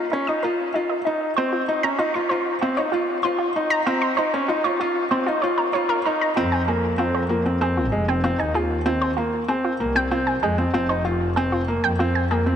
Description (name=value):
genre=piano and strings electronica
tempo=96 BPM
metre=4/4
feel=straight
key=F minor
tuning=A4 = 440 Hz
part: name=analog pluck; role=arpeggios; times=0.0-12.4 s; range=Eb4 to Eb6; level=-24 LUFS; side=right 1 dB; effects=chorus, tape echo
part: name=felt-muted upright piano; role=riff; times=0.0-12.6 s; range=Ab3 to F4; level=-22 LUFS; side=equal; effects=tape echo
part: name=clear chamber double bass section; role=bass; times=6.4-12.6 s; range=F1 to F2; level=-25 LUFS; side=equal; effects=none
room=wet huge ambient reverb, RT60 4.8 s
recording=none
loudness=-20 LUFS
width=side -8 dB against mid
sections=0.0-6.4 A section; 6.4-12.6 B section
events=build-up 0.0-6.4; drop 6.4-12.6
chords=0.0 Eb5; 1.4 Bbmadd9; 6.4 Fmadd9